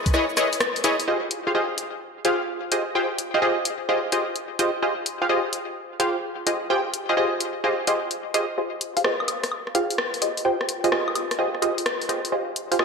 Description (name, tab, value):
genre	UK garage, two-step garage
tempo	128 BPM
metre	4/4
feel	swing 67% on 16ths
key	F minor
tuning	A4 = 440 Hz
part	punchy chord stab	stabs	0.1-12.8 s	Fb4 to G5	-23 LUFS	equal	chorus, ping-pong delay
part	punchy analog drum machine	drums	0.1-12.8 s	hi-hat, rim click, shaker, woodblock	-25 LUFS	left 2 dB	overdrive, high-pass filter on snare, high-pass filter on perc, high-pass filter on hats, gated reverb
room	wet lush hall reverb, RT60 1.7 s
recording	bright 1980s-style digital production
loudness	-22 LUFS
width	side -5 dB against mid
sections	0.0-1.1 A section; 1.1-8.6 B section; 8.6-12.8 C section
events	build-up 8.6-12.8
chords	0.0 Dbm9; 1.1 Fm9